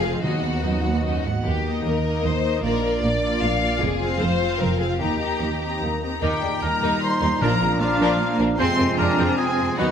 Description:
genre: cinematic, heroic adventure film score.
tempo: 151 BPM.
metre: 3/4.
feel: straight.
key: Eb major.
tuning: A4 = 441 Hz.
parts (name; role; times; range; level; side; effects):
warm symphonic violin section; melody; 0.0-9.9 s; D5 to C6; -29 LUFS; left 3 dB; none.
rich symphonic violin section; second line; 0.0-9.9 s; Bb3 to F5; -26 LUFS; left 3 dB; none.
rich symphonic viola section; accompaniment; 0.0-9.9 s; Eb3 to G4; -30 LUFS; right 1 dB; none.
mellow French horn section; sustained chords; 0.0-9.9 s; F#3 to F4; -29 LUFS; left 2 dB; none.
rich symphonic double bass section; bass; 0.0-9.9 s; F1 to F2; -27 LUFS; right 3 dB; none.
warm symphonic cello section; bass; 0.0-9.9 s; D#2 to D4; -27 LUFS; right 2 dB; none.
timpani; percussion; 0.2-0.8, 7.4-8.0 s; Bb2 to D#3; -29 LUFS; equal; none.
clear oboe; second line; 6.2-9.9 s; F4 to C5; -27 LUFS; right 1 dB; none.
mellow hollow silver concert flute; second line; 6.2-9.9 s; Ab5 to B5; -29 LUFS; left 2 dB; none.
warm clarinet; second line; 6.2-9.9 s; C4 to Eb4; -32 LUFS; left 2 dB; none.
warm trombone section; sustained chords; 6.2-9.9 s; Bb2 to F3; -29 LUFS; right 6 dB; none.
room: moderate scoring stage reverb, RT60 1.6 s.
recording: none.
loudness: -19 LUFS.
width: side -8 dB against mid.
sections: 0.0-6.2 A section; 6.2-9.9 A section.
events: none.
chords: 0.2 B/D#; 1.4 Eb; 2.6 Bb; 3.8 Fm; 5.0 Eb; 7.4 Bb; 8.6 Fm.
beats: | 0.24 0.64 1.04 | 1.45 1.84 2.25 | 2.64 3.04 3.43 | 3.82 4.21 4.61 | 5.01 5.42 5.83 | 6.23 6.63 7.03 | 7.42 7.81 8.20 | 8.59 8.98 9.38 | 9.79.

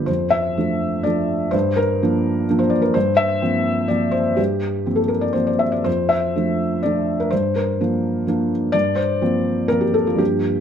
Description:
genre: neoclassical minimalist piano.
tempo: 125 BPM.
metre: 3/4.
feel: rubato.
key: unclear.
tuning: A4 = 442 Hz.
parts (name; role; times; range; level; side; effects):
felt-muted upright piano; solo; 0.0-10.6 s; G1 to E5; -17 LUFS; equal; slapback echo.
room: light reverb.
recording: close, detailed microphones.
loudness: -17 LUFS.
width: side -8 dB against mid.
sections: 0.1-10.6 A section.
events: none.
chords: 0.1 F6; 1.5 Gm7; 2.9 C7sus4/G; 5.9 F6; 7.3 Gm7; 8.7 C7sus4/G.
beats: | 0.08 0.57 1.05 | 1.53 2.01 2.48 | 2.95 3.42 3.90 | 4.38 4.87 5.36 | 5.86 6.35 6.83 | 7.31 7.79 8.27 | 8.74 9.21 9.70 | 10.20.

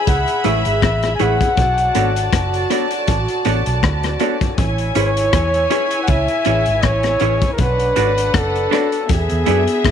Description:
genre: lovers rock reggae.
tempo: 80 BPM.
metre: 4/4.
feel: swing 56% on 16ths.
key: A major.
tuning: A4 = 439 Hz.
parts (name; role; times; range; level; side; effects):
warm flugelhorn; melody; 0.0-9.9 s; G#4 to G#5; -19 LUFS; left 2 dB; tape echo.
dark studio string section; second line; 0.0-9.9 s; B3 to B5; -22 LUFS; right 1 dB; none.
vintage muted fingered electric bass; bass; 0.1-9.9 s; F#1 to G#2; -20 LUFS; right 2 dB; none.
crunchy breakbeat drum kit; drums; 0.1-9.9 s; hi-hat, kick drum, rim click; -20 LUFS; left 2 dB; none.
dark grand piano; accompaniment; 0.4-9.6 s; D4 to C#5; -26 LUFS; left 11 dB; tape echo.
clean electric guitar; stabs; 0.4-9.6 s; A3 to D5; -22 LUFS; right 14 dB; none.
room: moderate spring reverb, RT60 2.3 s.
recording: 1960s-style stereo with parts hard left and right, faint mains hum.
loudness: -14 LUFS.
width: side -8 dB against mid.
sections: 0.0-9.9 A section.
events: none.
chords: 0.0 Amaj7; 1.6 Bm7; 4.6 Amaj7; 7.6 Bm7; 9.1 E7.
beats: 0.07 0.82 | 1.57 2.33 3.08 3.83 | 4.58 5.33 6.08 6.84 | 7.59 8.34 9.09 9.84.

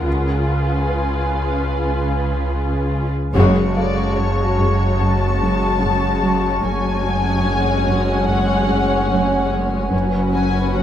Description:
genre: cinematic, suspense film score.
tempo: 73 BPM.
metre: 4/4.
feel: straight.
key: F# harmonic minor from 3.4 s.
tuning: A4 = 440 Hz.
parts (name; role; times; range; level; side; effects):
muted symphonic violin section; melody; 0.0-10.8 s; Cb5 to A5; -26 LUFS; left 6 dB; none.
muted symphonic viola section; accompaniment; 0.0-10.8 s; C#3 to F4; -24 LUFS; left 2 dB; none.
glassy FM pad; sustained chords; 0.0-10.8 s; C#4 to C#6; -24 LUFS; right 1 dB; ensemble chorus, built-in reverb.
muted symphonic cello section; bass; 0.0-10.8 s; F#2 to Db3; -24 LUFS; right 1 dB; none.
muted symphonic double bass section; bass; 0.0-10.8 s; F#1 to Db2; -26 LUFS; right 3 dB; none.
sub bass with octave; drone; 0.0-10.8 s; F#1 to Db2; -24 LUFS; equal; none.
dark grand piano; texture; 0.0-10.0 s; A4 to E#5; -34 LUFS; left 1 dB; none.
muted studio violin section; second line; 0.1-10.8 s; F#4 to C#5; -27 LUFS; left 2 dB; none.
muted symphonic cello section; riff; 3.3-10.8 s; F#2 to F#3; -24 LUFS; right 1 dB; none.
timpani; percussion; 3.3-4.5 s; F#2; -28 LUFS; left 2 dB; none.
room: light reverb.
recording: close, detailed microphones.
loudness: -16 LUFS.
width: side -10 dB against mid.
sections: 0.0-3.4 A section; 3.4-10.8 B section.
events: band accent 3.4-4.2.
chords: 0.1 Db7; 3.4 F#madd9; 9.9 Bsus2/F#.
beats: | 0.06 0.89 1.71 2.53 | 3.35 4.17 5.00 5.82 | 6.64 7.46 8.28 9.11 | 9.93 10.75.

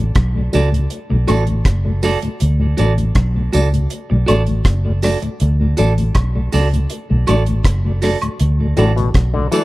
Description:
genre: roots reggae.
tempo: 80 BPM.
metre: 4/4.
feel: straight.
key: D major.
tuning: A4 = 438 Hz.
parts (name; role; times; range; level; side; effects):
mellow tonewheel organ; accompaniment; 0.0-9.6 s; D2 to D4; -22 LUFS; left 2 dB; chorus vibrato, slow rotary speaker, dub echo.
vintage muted fingered electric bass; bass; 0.0-9.5 s; F#1 to D2; -16 LUFS; equal; none.
deep reggae drum kit; drums; 0.1-9.6 s; hi-hat, kick drum, rim click; -18 LUFS; equal; none.
clean electric guitar; accompaniment; 0.5-9.6 s; F#4 to D5; -23 LUFS; right 4 dB; dub echo.
tambourine and woodblock; percussion; 0.5-9.6 s; none; -28 LUFS; right 2 dB; none.
auto-wah clav; arpeggios; 8.8-9.6 s; A2 to E3; -20 LUFS; left 5 dB; overdrive.
room: small room ambience.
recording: dark, warm production.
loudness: -14 LUFS.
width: side -18 dB against mid.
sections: 0.0-9.6 A section.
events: none.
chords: 0.0 D.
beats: 0.15 0.90 1.65 | 2.40 3.15 3.90 4.65 | 5.40 6.15 6.90 7.65 | 8.39 9.14.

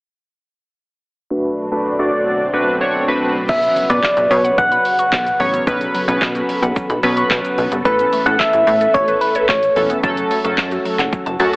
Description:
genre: dance-pop.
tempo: 110 BPM.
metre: 4/4.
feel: straight.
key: B minor.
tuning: A4 = 439 Hz.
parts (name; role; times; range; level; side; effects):
chorused retro synth keys; accompaniment; 1.3-11.6 s; C#3 to A5; -19 LUFS; equal; tremolo, sidechain pumping, low-pass filter.
string machine, cellos; sustained chords; 1.3-11.6 s; B2 to E5; -26 LUFS; equal; phaser, ensemble chorus, sidechain pumping, low-pass filter.
swell and impact; sound effects; 1.8-5.7 s; none; -28 LUFS; equal; none.
soft struck synth lead; melody; 3.5-9.9 s; B4 to F#5; -16 LUFS; equal; chorus, tape echo.
mallet-like synth pluck; arpeggios; 3.5-11.6 s; F#3 to C#6; -26 LUFS; equal; chorus, sidechain pumping, tape echo.
plucky analog bass; bass; 3.5-11.6 s; E1 to B2; -21 LUFS; equal; sidechain pumping.
deep house drum kit; drums; 3.5-11.6 s; crash cymbal, handclaps, hi-hat, kick drum, shaker, snare drum; -22 LUFS; equal; none.
room: light reverb, digital ambience.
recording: heavily compressed radio sound, AM radio sound.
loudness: -14 LUFS.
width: side -29 dB against mid.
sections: 1.3-3.5 A section; 3.5-11.6 B section.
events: filter sweep 1.3-3.5; swell 1.8-3.5; impact 3.5-5.7; synth keys fill 11.1-11.6.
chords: 1.3 Bm7; 3.5 Bsus2; 7.9 Aadd9; 10.0 F#m.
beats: | 1.31 1.85 2.40 2.94 | 3.49 4.03 4.58 5.12 | 5.67 6.22 6.76 7.31 | 7.85 8.40 8.94 9.49 | 10.03 10.58 11.12.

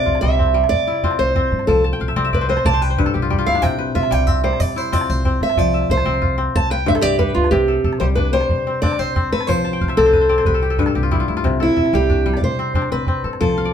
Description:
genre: west african traditional, West African string and xylophone music.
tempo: 123 BPM (dotted quarters).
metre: 12/8.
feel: straight.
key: C major.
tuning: A4 = 440 Hz.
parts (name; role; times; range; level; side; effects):
picked steel-string acoustic guitar; melody; 0.0-13.7 s; E4 to A5; -18 LUFS; right 1 dB; none.
kora; arpeggios; 0.0-13.7 s; G2 to A5; -22 LUFS; left 4 dB; none.
upright bass; bass; 0.1-13.7 s; C2 to C3; -22 LUFS; equal; none.
calabash; percussion; 0.1-13.5 s; none; -23 LUFS; right 1 dB; none.
room: moderate studio reverb, RT60 0.6 s.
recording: band playing live in one room.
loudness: -15 LUFS.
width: side -8 dB against mid.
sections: 0.0-7.5 A section; 7.5-13.7 B section.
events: steel-string acoustic guitar solo 0.0-7.5; kora fill 1.8-3.6, 9.6-11.4, 13.6.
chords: 0.0 C; 1.7 F5/C; 6.5 G/C; 7.5 C5; 9.5 F/C; 11.4 C.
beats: 0.23 0.71 1.20 | 1.68 2.17 2.65 3.14 | 3.63 4.11 4.60 5.09 | 5.57 6.06 6.55 7.04 | 7.52 8.01 8.50 8.99 | 9.48 9.97 10.46 10.95 | 11.44 11.93 12.43 12.92 | 13.41.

